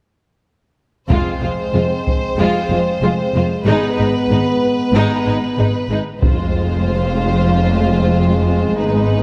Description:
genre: cinematic, epic orchestral film score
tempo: 94 BPM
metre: 4/4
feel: straight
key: unclear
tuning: A4 = 440 Hz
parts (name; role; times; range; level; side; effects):
- clear studio violin section; melody; 1.1-9.2 s; Cb5 to C5; -26 LUFS; equal; none
- warm symphonic violin section; second line; 1.1-9.2 s; Eb4 to F4; -26 LUFS; equal; none
- rich symphonic viola section; accompaniment; 1.1-9.2 s; Ab3; -25 LUFS; equal; none
- mellow French horn section; sustained chords; 1.1-9.2 s; Ab3 to C4; -24 LUFS; equal; none
- warm symphonic cello section; bass; 1.1-9.2 s; F2 to Ab2; -23 LUFS; equal; none
- warm symphonic double bass section; bass; 1.1-9.2 s; F1 to Ab1; -22 LUFS; equal; none
- solo taiko drums; drums; 1.1-2.4, 6.2-7.5 s; none; -21 LUFS; equal; none
room: moderate scoring stage reverb, RT60 1.9 s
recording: none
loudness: -16 LUFS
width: mono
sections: 1.1-6.2 A section; 6.2-9.2 B section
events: build-up 6.2-9.2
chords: 1.1 Fm; 3.7 Abm; 6.2 Fm

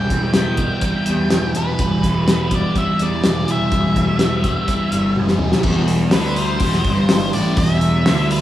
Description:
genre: psychedelic rock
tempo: 125 BPM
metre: 4/4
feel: straight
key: E minor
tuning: A4 = 441 Hz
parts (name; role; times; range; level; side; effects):
- octave-fuzz lead guitar; melody; 0.0-8.4 s; B4 to G5; -24 LUFS; equal; distortion
- mellow tonewheel organ; sustained chords; 0.0-8.4 s; E3 to G4; -26 LUFS; left 1 dB; slow rotary speaker, chorus vibrato
- thick fuzz guitar; riff; 0.0-8.4 s; E2 to E4; -20 LUFS; equal; distortion, phaser
- fuzz picked electric bass; bass; 0.0-8.4 s; E1 to E2; -22 LUFS; equal; overdrive
- cloth-damped thuddy drum kit; drums; 0.1-8.4 s; crash cymbal, hi-hat, kick drum, snare drum, toms; -20 LUFS; equal; none
room: moderate large studio reverb, RT60 1.1 s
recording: band playing live in one room, small room reverb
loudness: -15 LUFS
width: side -13 dB against mid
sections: 0.0-5.7 A section; 5.7-8.4 B section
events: drum fill 5.2-5.7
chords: 0.0 Em

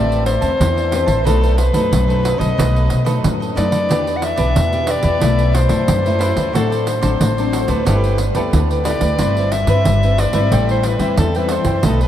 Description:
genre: samba and choro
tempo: 91 BPM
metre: 4/4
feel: straight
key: unclear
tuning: A4 = 444 Hz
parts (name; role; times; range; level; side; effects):
- warm soprano saxophone; melody; 0.0-12.1 s; A4 to F#5; -20 LUFS; left 2 dB; none
- cavaquinho; accompaniment; 0.0-12.1 s; D#4 to A5; -25 LUFS; right 4 dB; none
- nylon-string guitar; accompaniment; 0.0-12.1 s; F#2 to B4; -22 LUFS; left 3 dB; ensemble chorus
- upright bass; bass; 0.0-12.1 s; G1 to B2; -18 LUFS; equal; none
- pandeiro; percussion; 0.1-12.1 s; none; -22 LUFS; right 3 dB; none
room: moderate huge ambient reverb, RT60 9.1 s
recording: dreamy mix soaked in reverb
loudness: -14 LUFS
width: side -11 dB against mid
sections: 0.0-12.1 A section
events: none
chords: 0.0 Am9; 1.3 B7; 3.9 Em7; 5.2 B7sus4; 6.5 D7/A; 7.9 G69; 9.2 Cmaj7/G; 10.5 Am7

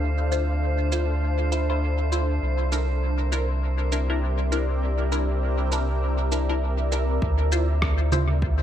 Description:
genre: ambient dub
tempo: 100 BPM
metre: 4/4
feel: swing 59% on 16ths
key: D minor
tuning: A4 = 440 Hz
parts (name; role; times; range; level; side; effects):
- granular cloud pad; sustained chords; 0.0-8.6 s; C4 to F5; -30 LUFS; equal; built-in reverb
- soft dub sub bass; bass; 0.0-8.6 s; C2 to D2; -23 LUFS; equal; none
- drifting glass-harmonics texture; texture; 0.0-7.2 s; C5; -37 LUFS; left 2 dB; chorus, built-in reverb
- filtered dub chord stab; stabs; 0.3-8.3 s; D4 to C5; -30 LUFS; left 1 dB; phaser, wide subtle chorus, dub echo
- electronic cabasa, rim click and congas; drums; 0.3-8.3 s; none; -31 LUFS; right 2 dB; dub echo
- electronic kick drum; drums; 7.2-8.6 s; none; -28 LUFS; equal; none
room: light reverb, digital ambience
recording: none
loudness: -22 LUFS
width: side -10 dB against mid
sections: 0.0-7.2 A section; 7.2-8.6 B section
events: none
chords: 0.0 Dm7; 2.4 C7; 7.2 Dm7

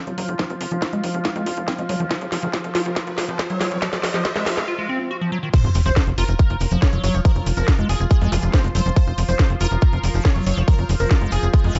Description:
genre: psychedelic trance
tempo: 140 BPM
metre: 4/4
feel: straight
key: F phrygian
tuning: A4 = 440 Hz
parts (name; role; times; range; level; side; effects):
- overtone-sweeping drone; sustained chords; 0.1-11.8 s; F3 to F4; -34 LUFS; equal; chorus, built-in reverb, sidechain pumping
- riser, sub drop and zap; sound effects; 2.3-8.4 s; none; -32 LUFS; equal; none
- granular cloud pad; texture; 0.1-4.7 s; F4 to C6; -37 LUFS; equal; none
- liquid acid bass; riff; 0.1-11.8 s; Eb3 to Gb4; -29 LUFS; equal; phaser, sidechain pumping, digital delay
- tight sequencer bass; bass; 0.1-11.8 s; F1 to F2; -24 LUFS; equal; high-pass filter
- drum and bass drum kit; drums; 0.1-11.8 s; crash cymbal, hi-hat, snare drum; -29 LUFS; equal; none
- electronic kick drum; drums; 0.4-11.6 s; none; -19 LUFS; equal; high-pass filter on kick
- supersaw stab; melody; 5.5-11.8 s; Ab4 to Db5; -31 LUFS; equal; phaser, sidechain pumping, digital delay
- tube shaker; percussion; 5.5-11.8 s; none; -40 LUFS; equal; none
room: light reverb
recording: dark, warm production, nothing above 7.8 kHz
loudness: -20 LUFS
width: mono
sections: 0.0-5.5 A section; 5.5-11.8 B section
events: build-up 0.0-5.5; drum fill 0.0-4.7; filter sweep on acid bass 0.0-5.5; drop 5.5-11.8; impact 5.5-7.2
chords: 0.0 F5

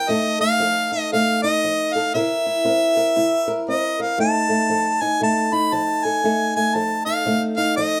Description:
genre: acoustic country blues, solo or duo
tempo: 117 BPM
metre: 4/4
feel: swing 60% on 8ths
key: F mixolydian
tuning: A4 = 443 Hz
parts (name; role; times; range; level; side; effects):
- bright harmonica; melody; 0.0-8.0 s; Eb5 to B5; -22 LUFS; equal; plate reverb
- fingerpicked old ladder-braced acoustic guitar; accompaniment; 0.0-8.0 s; F2 to Bb4; -25 LUFS; equal; none
room: moderate studio reverb, RT60 0.6 s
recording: none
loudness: -20 LUFS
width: mono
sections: 0.0-4.2 A section; 4.2-8.0 A section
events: none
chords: 0.1 F7; 2.1 C7; 4.2 F7

